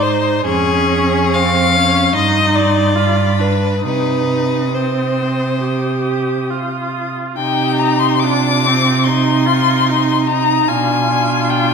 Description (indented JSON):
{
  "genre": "classical, slow romantic movement for string quartet",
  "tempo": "67-75 BPM",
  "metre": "4/4",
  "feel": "rubato",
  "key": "C minor",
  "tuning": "A4 = 439 Hz",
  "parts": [
    { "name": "rich violin", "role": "melody", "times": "0.0-11.7 s", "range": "G5 to Eb6", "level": "-19 LUFS", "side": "left 8 dB", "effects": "none" },
    { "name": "rich violin", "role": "second line", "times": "0.0-11.7 s", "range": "D4 to F5", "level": "-19 LUFS", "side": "left 3 dB", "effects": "none" },
    { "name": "rich viola", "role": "accompaniment", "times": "0.0-11.7 s", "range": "C4 to G4", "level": "-19 LUFS", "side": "right 3 dB", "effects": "none" },
    { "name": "rich cello", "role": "bass", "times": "0.0-11.7 s", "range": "F2 to C3", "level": "-18 LUFS", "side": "right 4 dB", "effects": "none" }
  ],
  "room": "wet concert hall reverb, RT60 1.8 s",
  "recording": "none",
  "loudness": "-13 LUFS",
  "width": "side -6 dB against mid",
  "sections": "0.0-7.4 A section; 7.4-11.7 A section",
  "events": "none",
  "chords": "0.5 Db/F; 2.1 Cm/G; 3.0 G7; 3.8 Cm; 10.7 Bdim7"
}